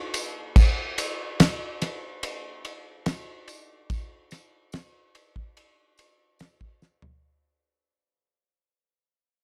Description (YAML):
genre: rock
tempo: 72 BPM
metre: 4/4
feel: straight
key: none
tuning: none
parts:
  - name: damped 70s drum kit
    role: drums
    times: 0.1-7.2 s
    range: crash cymbal, kick drum, ride cymbal, snare drum, toms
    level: -25 LUFS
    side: equal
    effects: none
  - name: tambourine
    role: percussion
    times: 0.1-7.0 s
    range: none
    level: -41 LUFS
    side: equal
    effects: none
room: little or no reverb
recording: dry, close 1970s-style studio recording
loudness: -26 LUFS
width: mono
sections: 0.0-7.2 A section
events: fade-out 0.0-7.2; drum fill 6.8-7.2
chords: none